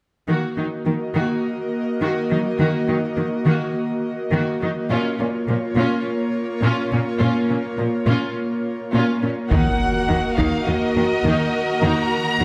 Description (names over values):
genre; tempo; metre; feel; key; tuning
cinematic, hybrid orchestral and electronic film score; 104 BPM; 4/4; straight; Eb minor; A4 = 444 Hz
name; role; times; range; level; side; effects
rich studio viola section; accompaniment; 0.3-12.4 s; Eb3 to Gb4; -29 LUFS; equal; none
airy breathy pad; sustained chords; 0.3-12.4 s; Bb3 to Eb5; -26 LUFS; equal; chorus
tight sequenced synth; arpeggios; 0.3-12.4 s; Eb3 to Bb4; -29 LUFS; equal; chorus, phaser, delay
rich symphonic cello section; bass; 0.3-12.4 s; Bb2 to Eb3; -26 LUFS; equal; none
warm symphonic violin section; melody; 9.5-12.4 s; Eb5 to Bb5; -26 LUFS; equal; none
warm symphonic violin section; second line; 9.5-12.4 s; Gb4 to Bb4; -28 LUFS; equal; none
rich symphonic double bass section; bass; 9.5-12.4 s; Eb2; -29 LUFS; equal; none
taiko ensemble; drums; 9.5-10.6 s; none; -28 LUFS; equal; none
impact; sound effects; 9.5-11.8 s; none; -29 LUFS; equal; none
room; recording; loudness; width
wet scoring stage reverb, RT60 1.8 s; none; -21 LUFS; mono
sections
0.3-9.5 A section; 9.5-12.4 B section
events
impact 9.5-11.8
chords
0.3 Ebm; 4.9 Bbm; 9.5 Ebm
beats
| 0.28 0.86 1.44 2.01 | 2.59 3.17 3.75 4.32 | 4.90 5.48 6.05 6.63 | 7.21 7.78 8.36 8.94 | 9.51 10.09 10.67 11.24 | 11.82 12.40